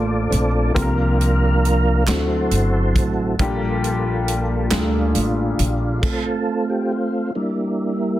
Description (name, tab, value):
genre	slow gospel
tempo	46 BPM (dotted quarters)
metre	6/8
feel	straight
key	unclear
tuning	A4 = 439 Hz
part	warm upright piano	accompaniment	0.0-6.1 s	Bb2 to C5	-25 LUFS	left 3 dB	none
part	mellow tonewheel organ	sustained chords	0.0-8.2 s	F3 to F5	-21 LUFS	right 1 dB	fast rotary speaker, chorus vibrato
part	upright bass	bass	0.0-6.0 s	G1 to D2	-20 LUFS	equal	none
part	natural country drum kit	drums	0.3-6.2 s	crash cymbal, hi-hat, kick drum, snare drum	-23 LUFS	equal	none
part	group handclap	percussion	2.1-5.1 s	none	-29 LUFS	right 4 dB	none
room	light reverb, small room ambience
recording	dense, heavily limited modern master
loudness	-17 LUFS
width	side -14 dB against mid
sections	0.0-8.2 A section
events	tonewheel organ solo 0.0-8.2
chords	0.0 Bbmaj7; 0.8 C7sus4; 2.1 D7; 3.4 Gm7/Bb; 6.0 F; 7.3 Gm6